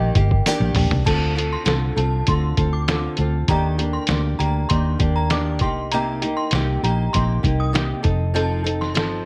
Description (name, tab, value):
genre	indie pop, bedroom pop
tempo	99 BPM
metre	4/4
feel	straight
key	unclear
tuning	A4 = 440 Hz
part	hollow clarinet-like synth lead	melody	0.0-0.5 s	Eb5	-33 LUFS	equal	subtle chorus, slapback echo
part	nylon-string guitar	accompaniment	0.0-9.3 s	C3 to A4	-27 LUFS	equal	analog chorus, warbly pitch drift
part	vintage muted fingered electric bass	bass	0.0-9.2 s	F1 to Eb2	-24 LUFS	equal	none
part	lo-fi sampler-style drum kit	drums	0.2-9.1 s	crash cymbal, hi-hat, kick drum, snare drum, toms	-25 LUFS	equal	none
part	tambourine	percussion	0.5-0.6 s	none	-33 LUFS	equal	none
part	synth chime	second line	1.1-9.0 s	A5 to Eb6	-31 LUFS	equal	ensemble chorus, subtle chorus, slapback echo
room	light reverb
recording	none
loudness	-20 LUFS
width	mono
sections	0.0-1.1 A section; 1.1-9.3 B section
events	drum fill 0.5-1.1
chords	0.0 Ebmaj7; 1.1 Dm7; 3.5 Ebmaj7; 5.6 Cm7; 8.0 F7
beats	0.46 | 1.07 1.67 2.28 2.88 | 3.49 4.10 4.71 5.31 | 5.92 6.53 7.14 7.74 | 8.35 8.96